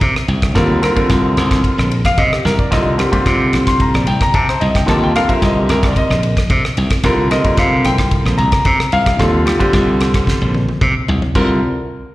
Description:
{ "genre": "electric jazz fusion", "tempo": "111 BPM", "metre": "4/4", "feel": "straight", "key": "C minor", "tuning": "A4 = 441 Hz", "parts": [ { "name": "glassy slap bass", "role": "bass", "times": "0.0-11.6 s", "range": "Bb1 to C3", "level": "-16 LUFS", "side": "equal", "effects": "none" }, { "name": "damped 70s drum kit", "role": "drums", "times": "0.0-11.5 s", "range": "crash cymbal, kick drum, ride cymbal, rim click, snare drum, toms", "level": "-18 LUFS", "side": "equal", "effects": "none" }, { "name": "clear concert grand piano", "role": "accompaniment", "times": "0.5-11.6 s", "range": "D3 to C6", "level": "-16 LUFS", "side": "equal", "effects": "slapback echo" } ], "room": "small room ambience", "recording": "live gig heard through the venue's PA, recital hall reverb", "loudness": "-12 LUFS", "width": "side -17 dB against mid", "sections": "0.0-11.3 A section", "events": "drum fill 2.4, 10.3-11.3", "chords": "0.0 Cm11; 11.3 C9sus4" }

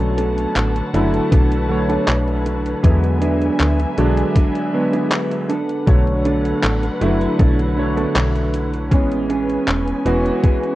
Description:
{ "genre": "vaporwave", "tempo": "79 BPM", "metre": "4/4", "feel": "straight", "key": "B dorian", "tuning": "A4 = 440 Hz", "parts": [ { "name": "warm electric grand piano", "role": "accompaniment", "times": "0.0-10.8 s", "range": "D3 to C#5", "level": "-20 LUFS", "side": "right 1 dB", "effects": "analog chorus, vintage 12-bit sampler grit, tape echo" }, { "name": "muted chamber string section", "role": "sustained chords", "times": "0.0-10.8 s", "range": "D3 to A5", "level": "-26 LUFS", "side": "left 1 dB", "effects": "vintage 12-bit sampler grit" }, { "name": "slap-like FM bass", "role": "bass", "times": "0.0-10.3 s", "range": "E1 to E2", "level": "-20 LUFS", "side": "equal", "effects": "tube saturation" }, { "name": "detuned 8-bit digital drum machine", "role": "drums", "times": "0.0-10.8 s", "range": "handclaps, hi-hat", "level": "-24 LUFS", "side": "equal", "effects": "overdrive" }, { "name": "mellow electric guitar", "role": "riff", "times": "0.2-10.6 s", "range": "B3 to A4", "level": "-25 LUFS", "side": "right 3 dB", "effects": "lush chorus, tape echo" }, { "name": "electronic kick drum", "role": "drums", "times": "1.3-10.6 s", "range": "none", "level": "-14 LUFS", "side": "equal", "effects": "overdrive" } ], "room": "light reverb, digital ambience", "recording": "worn, warbling old tape, cassette tape, warbly pitch drift", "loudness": "-15 LUFS", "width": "side -16 dB against mid", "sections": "0.0-10.8 A section", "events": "none", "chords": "0.0 Bm7; 2.8 E7; 5.5 Bm7; 8.9 Amaj9" }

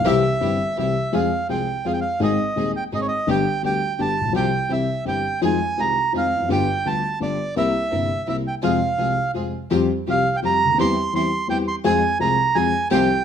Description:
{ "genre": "tango", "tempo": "168 BPM", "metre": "3/4", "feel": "rubato", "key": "F minor, F harmonic minor from 9.7 s", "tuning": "A4 = 440 Hz", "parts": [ { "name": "bandoneon", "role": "melody", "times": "0.0-13.2 s", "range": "Db5 to C6", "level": "-22 LUFS", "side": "right 3 dB", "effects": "plate reverb" }, { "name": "dark baby grand piano", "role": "accompaniment", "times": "0.0-13.1 s", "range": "Eb1 to Ab4", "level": "-22 LUFS", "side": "left 4 dB", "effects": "none" }, { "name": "clear symphonic string section", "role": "stabs", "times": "0.0-13.1 s", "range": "E3 to Bb4", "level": "-30 LUFS", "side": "right 5 dB", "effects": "none" } ], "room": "moderate large studio reverb, RT60 0.8 s", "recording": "none", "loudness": "-19 LUFS", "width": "side -8 dB against mid", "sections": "0.0-1.1 A section; 1.1-9.7 B section; 9.7-13.2 A section", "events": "none", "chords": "0.1 C; 1.1 Fm; 2.2 Ab; 3.3 G; 4.3 Csus4; 4.7 C; 5.4 Fm7; 6.5 G7; 7.6 C7; 8.6 Fm; 9.7 Fsus2; 10.8 C/E; 11.8 Fm; 12.9 Csus4" }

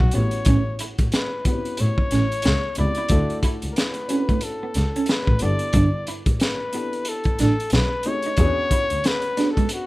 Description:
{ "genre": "R&B, neo-soul", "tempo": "91 BPM", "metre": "4/4", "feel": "swing 60% on 16ths", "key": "D major", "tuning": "A4 = 439 Hz", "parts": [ { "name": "breathy flugelhorn", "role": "melody", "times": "0.0-9.9 s", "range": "F#4 to D5", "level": "-27 LUFS", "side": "left 2 dB", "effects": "none" }, { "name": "dark baby grand piano", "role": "accompaniment", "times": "0.0-9.9 s", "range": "A3 to B4", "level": "-31 LUFS", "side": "left 2 dB", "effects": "none" }, { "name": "warm double bass", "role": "bass", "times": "0.0-9.0 s", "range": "G1 to A2", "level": "-22 LUFS", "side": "equal", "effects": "none" }, { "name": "crunchy breakbeat drum kit", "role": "drums", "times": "0.0-9.9 s", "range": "hi-hat, kick drum, snare drum", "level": "-23 LUFS", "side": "equal", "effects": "none" }, { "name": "electric guitar at the edge of break-up", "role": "second line", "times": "0.2-9.7 s", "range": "G#3 to E4", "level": "-25 LUFS", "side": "right 4 dB", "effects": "none" } ], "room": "little or no reverb", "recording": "rough home demo mix", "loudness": "-19 LUFS", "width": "side -19 dB against mid", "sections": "0.0-9.9 A section", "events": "none", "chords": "0.1 A13; 3.1 Dmaj9; 5.4 G69; 7.7 B13; 8.4 E13 (rootless)" }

